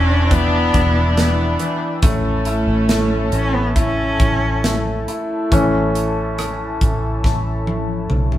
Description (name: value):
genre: pop ballad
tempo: 70 BPM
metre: 4/4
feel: straight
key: unclear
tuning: A4 = 440 Hz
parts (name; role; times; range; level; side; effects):
- rich cello; melody; 0.0-5.0 s; A3 to C#4; -21 LUFS; equal; none
- clear French horn section; second line; 0.0-5.1 s; C#4 to D4; -24 LUFS; left 1 dB; none
- bright grand piano; accompaniment; 0.0-8.4 s; E3 to E4; -23 LUFS; equal; none
- warm analog pad; sustained chords; 0.0-8.4 s; E4 to A5; -27 LUFS; left 2 dB; chorus
- vintage muted fingered electric bass; bass; 0.0-8.4 s; E1 to B1; -20 LUFS; equal; none
- modern studio drum kit; drums; 0.3-8.4 s; hi-hat, kick drum, rim click, snare drum, toms; -20 LUFS; equal; none
room: moderate stone room reverb, RT60 1.1 s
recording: band playing live in one room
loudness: -15 LUFS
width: side -13 dB against mid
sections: 0.0-5.5 A section; 5.5-8.4 B section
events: grand piano solo 5.5-8.4; drum fill 7.2-8.4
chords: 0.0 Em7; 2.0 A